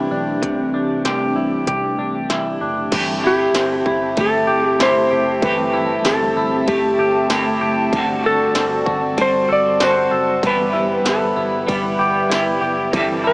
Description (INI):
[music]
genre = dream pop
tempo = 96 BPM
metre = 4/4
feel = straight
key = unclear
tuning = A4 = 442 Hz
[part]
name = hollow soft pad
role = sustained chords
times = 0.0-13.3 s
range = E3 to B5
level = -22 LUFS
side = equal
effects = chorus
[part]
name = clean electric guitar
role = arpeggios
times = 0.0-13.3 s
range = C3 to A4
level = -21 LUFS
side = equal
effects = lush chorus, tape echo
[part]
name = vintage muted picked electric bass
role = bass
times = 0.0-13.3 s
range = F#1 to C2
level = -34 LUFS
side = equal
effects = none
[part]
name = industrial drum kit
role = drums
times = 0.4-13.1 s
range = crash cymbal, hi-hat, kick drum, ride cymbal, snare drum, tambourine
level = -24 LUFS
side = equal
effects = distortion
[part]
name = clean electric guitar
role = accompaniment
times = 2.9-13.3 s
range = G2 to A4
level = -23 LUFS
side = right 1 dB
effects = harmonic tremolo, lush chorus
[part]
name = clean lap steel guitar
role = melody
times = 3.3-13.3 s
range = G4 to D5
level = -18 LUFS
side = equal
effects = tape echo
[sound]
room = moderate huge ambient reverb, RT60 6.6 s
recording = small speaker sound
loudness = -15 LUFS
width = side -25 dB against mid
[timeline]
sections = 0.0-2.9 A section; 2.9-13.3 B section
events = none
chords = 0.0 C69; 2.9 Am7; 7.9 D7/G; 10.4 Em/G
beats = | 0.43 1.05 1.68 2.30 | 2.93 3.55 4.18 4.80 | 5.43 6.05 6.68 7.30 | 7.93 8.55 9.18 9.80 | 10.43 11.05 11.68 12.30 | 12.93